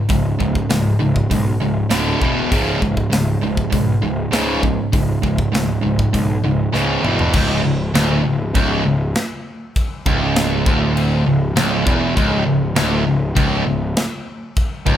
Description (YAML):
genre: heavy metal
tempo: 100 BPM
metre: 4/4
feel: straight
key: C# phrygian, C# minor from 7.3 s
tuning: A4 = 440 Hz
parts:
  - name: distorted electric guitar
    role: riff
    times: 0.0-15.0 s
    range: C#2 to E3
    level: -22 LUFS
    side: left 8 dB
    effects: overdrive
  - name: distorted electric guitar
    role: riff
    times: 0.0-15.0 s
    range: C#2 to E3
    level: -19 LUFS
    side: right 4 dB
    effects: overdrive
  - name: fuzz picked electric bass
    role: bass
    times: 0.1-15.0 s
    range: C#1 to C#2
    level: -22 LUFS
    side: left 1 dB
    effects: overdrive
  - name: tight metal drum kit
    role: drums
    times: 0.1-15.0 s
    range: china cymbal, crash cymbal, hi-hat, kick drum, snare drum, toms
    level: -21 LUFS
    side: equal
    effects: none
room: light reverb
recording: band playing live in one room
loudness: -15 LUFS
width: side -10 dB against mid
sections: 0.0-7.3 A section; 7.3-15.0 B section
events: drum fill 6.7-7.3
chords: 0.0 C#5; 1.9 D5; 2.2 E5; 2.5 C#5; 7.0 E5; 7.3 N.C.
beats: | 0.10 0.70 1.31 1.91 | 2.51 3.12 3.72 4.33 | 4.93 5.53 6.14 6.74 | 7.34 7.95 8.55 9.15 | 9.75 10.35 10.96 11.56 | 12.16 12.76 13.36 13.96 | 14.56